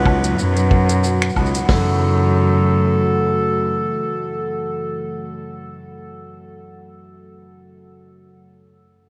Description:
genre	folktronica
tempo	92 BPM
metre	4/4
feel	swing 56% on 16ths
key	F# dorian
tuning	A4 = 440 Hz
part	mellow clarinet	melody	0.0-5.1 s	A4 to B4	-26 LUFS	equal	analog delay
part	vibraphone with soft mallets	second line	0.0-6.8 s	F#5	-33 LUFS	equal	analog delay
part	warbly tape-like pad	sustained chords	0.2-5.1 s	B2 to F#4	-31 LUFS	equal	chorus, built-in reverb, vintage 12-bit sampler grit
part	concert harp	arpeggios	0.0-8.3 s	F#2 to F#4	-29 LUFS	equal	analog delay
part	muted cello	bass	0.0-3.6 s	C#2 to F#2	-20 LUFS	equal	none
part	organic electronic drum kit	drums	0.1-1.7 s	finger snaps, hi-hat, shaker, woodblock	-30 LUFS	equal	none
part	warm soul drum kit	drums	0.1-1.9 s	hi-hat, kick drum, snare drum	-20 LUFS	equal	none
room	moderate huge ambient reverb, RT60 7.9 s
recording	dreamy mix soaked in reverb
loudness	-18 LUFS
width	mono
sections	0.0-1.7 A section; 1.7-4.3 B section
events	none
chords	0.0 G#m7 (rootless); 1.7 F#m7

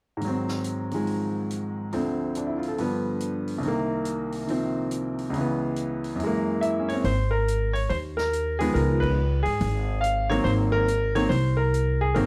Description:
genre	jazz piano trio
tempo	141 BPM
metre	4/4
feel	swing 64% on 8ths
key	Ab mixolydian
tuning	A4 = 438 Hz
part	clear baby grand piano	melody	0.2-12.3 s	C2 to F5	-27 LUFS	equal	none
part	vintage drum kit	drums	0.2-12.3 s	hi-hat, kick drum, ride cymbal, snare drum	-44 LUFS	equal	none
part	upright bass	bass	7.0-12.3 s	Ab1 to Ab2	-27 LUFS	equal	none
room	light reverb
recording	none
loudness	-26 LUFS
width	mono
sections	0.2-7.0 A section; 7.0-12.3 B section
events	band accent 9.0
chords	0.2 Ab7; 1.9 Dm7; 2.8 G7; 3.6 Cm7; 5.3 Dbm7; 6.2 Gb9; 7.0 Absus2; 8.7 Db9; 10.5 Ab9

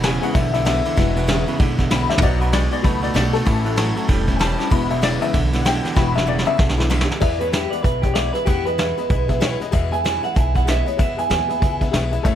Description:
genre	rockabilly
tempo	192 BPM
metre	4/4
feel	swing 61% on 8ths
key	E major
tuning	A4 = 440 Hz
part	honky-tonk upright piano	accompaniment	0.0-12.4 s	F#3 to B5	-24 LUFS	left 9 dB	none
part	picked steel-string acoustic guitar	accompaniment	0.0-12.4 s	E2 to F#4	-28 LUFS	left 4 dB	none
part	twangy electric guitar	riff	0.0-7.2 s	E2 to A3	-24 LUFS	right 7 dB	none
part	upright bass	bass	0.0-12.4 s	E1 to E2	-23 LUFS	equal	none
part	vintage brush drum kit	drums	0.0-12.3 s	crash cymbal, hi-hat, kick drum, ride cymbal, snare drum, toms	-21 LUFS	equal	none
part	electric guitar through a small old amp	melody	7.2-11.8 s	G4 to G#5	-23 LUFS	right 3 dB	analog delay
room	light reverb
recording	none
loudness	-16 LUFS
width	side -10 dB against mid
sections	0.0-7.2 A section; 7.2-12.4 B section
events	honky-tonk piano solo 0.0-7.2; drum fill 2.1, 6.0-7.2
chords	0.0 E; 2.2 B; 3.5 A; 4.7 E

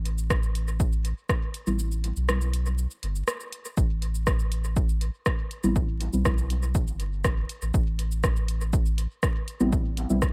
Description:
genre	dub techno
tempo	121 BPM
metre	4/4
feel	straight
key	A minor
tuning	A4 = 439 Hz
part	soft dub sub bass	bass	0.0-10.3 s	G1 to B1	-30 LUFS	equal	sidechain pumping
part	punchy analog drum machine	drums	0.1-10.3 s	hi-hat, rim click, shaker	-34 LUFS	equal	dub echo
part	electronic kick drum	drums	0.3-10.3 s	none	-28 LUFS	equal	none
part	deep mellow chord stab	stabs	1.7-2.4, 5.6-6.4, 9.6-10.2 s	G3 to E4	-30 LUFS	equal	chorus, phaser, dub echo
room	light reverb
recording	echo-heavy mix, vinyl crackle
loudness	-27 LUFS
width	mono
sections	0.0-10.3 A section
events	filter sweep on synth stab 0.0-10.3; kick drops out 1.8-3.8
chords	0.0 Am7

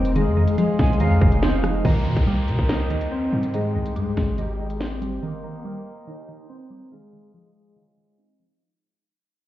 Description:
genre	hip hop, drill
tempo	142 BPM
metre	4/4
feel	half-time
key	C minor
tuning	A4 = 440 Hz
part	glassy wavetable pluck	accompaniment	0.0-8.6 s	Eb3 to C4	-28 LUFS	right 1 dB	chorus, low-pass filter
part	hand-pumped harmonium	sustained chords	0.0-8.6 s	Eb4 to G5	-33 LUFS	right 2 dB	low-pass filter
part	electric guitar at the edge of break-up	arpeggios	0.0-8.6 s	Ab3 to G4	-27 LUFS	left 2 dB	ensemble chorus, low-pass filter, digital delay
part	long sustained 808-style bass	bass	0.0-5.2 s	F1 to C3	-23 LUFS	equal	none
part	drill drum kit	drums	0.1-5.1 s	hi-hat, kick drum, rim click, snare drum	-21 LUFS	equal	none
part	breathy jazz flute	second line	0.8-1.4 s	F5 to Ab5	-34 LUFS	right 2 dB	digital delay
part	downlifter	sound effects	1.8-5.2 s	none	-40 LUFS	equal	none
room	digital ambience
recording	heard muffled through a wall, stone room reverb, EQ, nothing above 8.0 kHz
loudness	-19 LUFS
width	side -14 dB against mid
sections	0.0-1.8 A section; 1.8-8.6 B section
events	fade-out 1.8-8.6; filter sweep 1.8-8.6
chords	0.2 Fm7; 1.8 Cm7; 3.5 Abmaj7; 5.2 Cm7; 6.9 Fm7

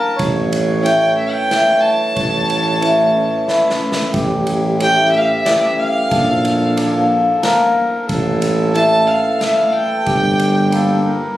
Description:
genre	klezmer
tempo	91 BPM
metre	3/4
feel	straight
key	A phrygian dominant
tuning	A4 = 441 Hz
part	warm violin	melody	0.0-11.0 s	D5 to A5	-18 LUFS	equal	plate reverb
part	mellow accordion	second line	0.0-11.4 s	E4 to C#5	-23 LUFS	right 1 dB	none
part	cimbalom	accompaniment	0.0-11.4 s	E3 to E4	-17 LUFS	left 1 dB	none
part	warm tuba	bass	0.2-11.3 s	G1 to Bb1	-18 LUFS	equal	none
part	street-band drum kit	drums	0.2-10.9 s	kick drum, ride cymbal, snare drum	-26 LUFS	equal	none
room	moderate studio reverb, RT60 0.6 s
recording	recorded on a phone in the room, studio reverb, compression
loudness	-13 LUFS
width	side -14 dB against mid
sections	0.0-4.1 A section; 4.1-11.4 A section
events	drum fill 3.5-4.1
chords	0.2 A; 6.1 Bb; 8.1 A; 10.1 Gm

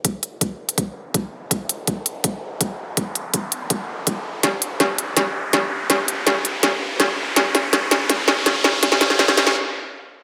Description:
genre	half-time drum and bass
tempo	164 BPM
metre	4/4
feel	half-time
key	none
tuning	none
part	electronic kick drum	drums	0.0-9.3 s	none	-28 LUFS	equal	overdrive, high-pass filter on kick, studio reverb
part	industrial drum kit	drums	0.0-9.5 s	hi-hat, snare drum	-20 LUFS	equal	studio reverb
part	riser	sound effects	0.2-9.6 s	none	-28 LUFS	equal	none
room	wet digital room reverb, RT60 1.0 s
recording	high-pass filter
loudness	-20 LUFS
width	mono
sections	0.0-10.2 A section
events	build-up 0.0-10.2; riser 0.2-9.6; drum fill 4.4-9.6; stop 9.6-10.2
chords	none

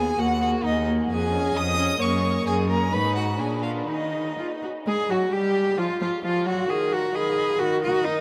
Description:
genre	quick classical-period movement for string quartet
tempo	132 BPM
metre	2/4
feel	rubato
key	Eb minor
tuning	A4 = 441 Hz
part	rich violin	melody	0.0-8.2 s	F4 to Eb6	-31 LUFS	equal	none
part	rich violin	second line	0.0-8.2 s	Eb4 to Gb5	-32 LUFS	equal	none
part	rich viola	accompaniment	0.0-8.2 s	Eb3 to Eb4	-30 LUFS	equal	none
part	rich cello	bass	0.0-8.2 s	Eb2 to Ab4	-28 LUFS	equal	none
room	wet huge ambient reverb, RT60 8.9 s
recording	in a vast, echoing space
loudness	-24 LUFS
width	mono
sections	0.0-4.9 A section; 4.9-8.2 A section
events	none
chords	0.2 Eb5; 1.1 Db/F; 2.0 Gb; 2.9 Abm; 3.4 Bb7; 3.9 N.C.; 4.9 Gbsus2; 5.3 N.C.; 6.7 Ebm; 7.2 Abm/Eb; 7.6 Ebm

